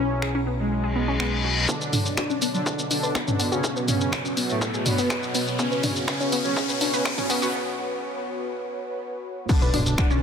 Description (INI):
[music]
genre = melodic techno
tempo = 123 BPM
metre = 4/4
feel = straight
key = B dorian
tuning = A4 = 440 Hz
[part]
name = soft supersaw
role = melody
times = 0.0-10.2 s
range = A2 to D4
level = -29 LUFS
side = equal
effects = wide subtle chorus, sidechain pumping, ping-pong delay
[part]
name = dark analog pad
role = sustained chords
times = 0.0-10.2 s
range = B2 to F#5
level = -33 LUFS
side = equal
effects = chorus, sidechain pumping
[part]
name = wide unison pluck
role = arpeggios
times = 0.0-10.2 s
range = F#3 to B5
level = -29 LUFS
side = left 1 dB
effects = phaser, sidechain pumping, digital delay
[part]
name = fat analog bass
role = bass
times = 0.0-1.7, 9.6-10.2 s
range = B1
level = -27 LUFS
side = equal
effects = sidechain pumping
[part]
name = overtone-sweeping drone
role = drone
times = 0.0-10.2 s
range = B2 to F#3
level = -37 LUFS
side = right 2 dB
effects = chorus, built-in reverb, sidechain pumping
[part]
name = punchy analog drum machine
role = drums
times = 0.2-10.2 s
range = crash cymbal, finger snaps, hi-hat, shaker, toms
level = -28 LUFS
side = equal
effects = none
[part]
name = reverse cymbal, riser and impact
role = sound effects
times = 0.9-10.2 s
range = none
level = -31 LUFS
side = left 2 dB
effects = none
[part]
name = electronic kick drum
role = drums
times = 1.7-10.1 s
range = none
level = -26 LUFS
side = equal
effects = high-pass filter on kick, high-pass filter on room
[sound]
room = light reverb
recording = high-pass filter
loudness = -22 LUFS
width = side -7 dB against mid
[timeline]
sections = 0.0-1.7 A section; 1.7-9.5 B section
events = reverse cymbal 0.9-1.7; build-up 1.7-9.5; riser 1.7-7.5; filter sweep on synth pluck 1.7-9.5; filter sweep 1.7-9.5; break 7.5-9.5; impact 9.5-10.2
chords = 0.0 C#m7/B; 1.7 Bmadd9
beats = 0.22 0.71 1.20 | 1.69 2.17 2.66 3.15 | 3.64 4.13 4.61 5.10 | 5.59 6.08 6.57 7.05 | 7.54 8.03 8.52 9.01 | 9.49 9.98